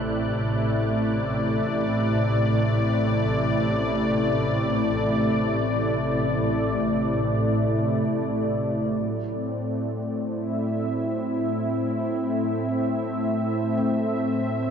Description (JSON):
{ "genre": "ambient", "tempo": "free time", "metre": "none", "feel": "none", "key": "A dorian", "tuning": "A4 = 440 Hz", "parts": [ { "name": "warm analog pad", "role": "sustained chords", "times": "0.0-14.7 s", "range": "A2 to E5", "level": "-23 LUFS", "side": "equal", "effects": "chorus" }, { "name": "dark symphonic double bass section", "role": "bass", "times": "0.0-8.9 s", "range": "A1", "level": "-28 LUFS", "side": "equal", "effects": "none" }, { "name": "wind-like tuned noise texture", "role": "texture", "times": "0.0-9.0 s", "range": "F#6", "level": "-43 LUFS", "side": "right 3 dB", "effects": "built-in reverb" }, { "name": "felt-muted upright piano", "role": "arpeggios", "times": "9.0-14.7 s", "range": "F#3 to C4", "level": "-38 LUFS", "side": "right 1 dB", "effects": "none" } ], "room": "wet huge ambient reverb, RT60 6.9 s", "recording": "dark, warm production", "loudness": "-22 LUFS", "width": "side -7 dB against mid", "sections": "0.0-9.0 A section; 9.0-14.7 B section", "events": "fade-out on synth texture 0.0-9.0", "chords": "0.0 Am", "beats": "free time" }